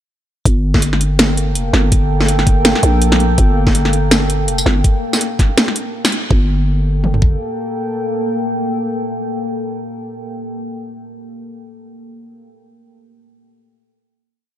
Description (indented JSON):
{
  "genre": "half-time drum and bass",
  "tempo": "164 BPM",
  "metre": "4/4",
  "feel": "swing 57% on 16ths, half-time",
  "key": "G minor",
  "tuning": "A4 = 438 Hz",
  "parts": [
    { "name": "deep dark ambient pad", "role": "sustained chords", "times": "1.1-10.0 s", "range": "Bb3 to G5", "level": "-21 LUFS", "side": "equal", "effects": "chorus, built-in reverb, vintage 12-bit sampler grit, sidechain pumping" },
    { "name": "growling 808-style bass", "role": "bass", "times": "0.5-7.4 s", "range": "F1 to Bb1", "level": "-15 LUFS", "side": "equal", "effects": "none" },
    { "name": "drum and bass drum kit", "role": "drums", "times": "0.5-7.3 s", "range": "kick drum, toms", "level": "-14 LUFS", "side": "equal", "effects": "none" },
    { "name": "drum and bass drum kit", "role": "drums", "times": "0.5-6.2 s", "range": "hi-hat, snare drum, tambourine", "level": "-16 LUFS", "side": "equal", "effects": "none" }
  ],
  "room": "light reverb, digital ambience",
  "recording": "dry, gritty hardware recording",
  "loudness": "-13 LUFS",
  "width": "side -12 dB against mid",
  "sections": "0.5-6.3 drop; 6.3-9.2 final chord",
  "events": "drop 0.5-6.3; band accent 6.0",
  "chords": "0.5 Gmadd9"
}